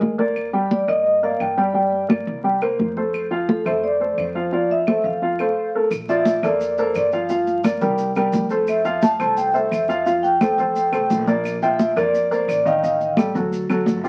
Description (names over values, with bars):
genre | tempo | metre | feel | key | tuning
Afro-Cuban jazz | 173 BPM | 4/4 | straight | F major | A4 = 438 Hz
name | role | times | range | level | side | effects
warm baby grand piano | accompaniment | 0.0-14.1 s | Eb3 to G5 | -23 LUFS | equal | none
upright bass | bass | 0.0-14.1 s | G1 to G2 | -35 LUFS | equal | none
congas | percussion | 0.0-14.0 s | none | -25 LUFS | equal | none
claves | percussion | 0.4-13.9 s | none | -38 LUFS | equal | none
vibraphone with soft mallets | melody | 0.7-13.1 s | A4 to A5 | -23 LUFS | equal | none
maracas | percussion | 5.9-14.1 s | none | -47 LUFS | equal | none
room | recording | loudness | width
moderate studio reverb, RT60 0.8 s | very old 78 rpm record, vinyl crackle | -20 LUFS | mono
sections
0.0-5.9 A section; 5.9-14.1 B section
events
none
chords
0.4 Ebmaj7; 1.7 Gm; 2.4 C5; 3.1 Fmaj7; 5.2 F; 5.9 Bbmaj7; 7.3 Gm7; 8.0 C5; 8.7 Fmaj7; 10.1 Fadd9; 11.4 Bb6; 12.8 F13b9/A; 13.5 D